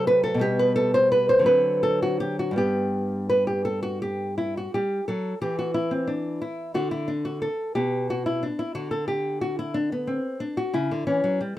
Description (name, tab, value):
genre	classical, baroque-style dance for nylon-string guitar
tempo	54-61 BPM (dotted quarters)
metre	6/8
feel	rubato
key	G major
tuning	A4 = 443 Hz
part	nylon-string guitar	solo	0.0-11.6 s	G2 to C5	-22 LUFS	equal	none
room	light reverb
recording	dry, close 1970s-style studio recording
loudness	-22 LUFS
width	side -14 dB against mid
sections	0.0-4.7 A section; 4.7-11.6 B section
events	none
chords	0.4 G/B; 1.5 D7; 2.6 G; 4.7 Em11; 6.8 N.C.; 10.7 A/C# (rootless)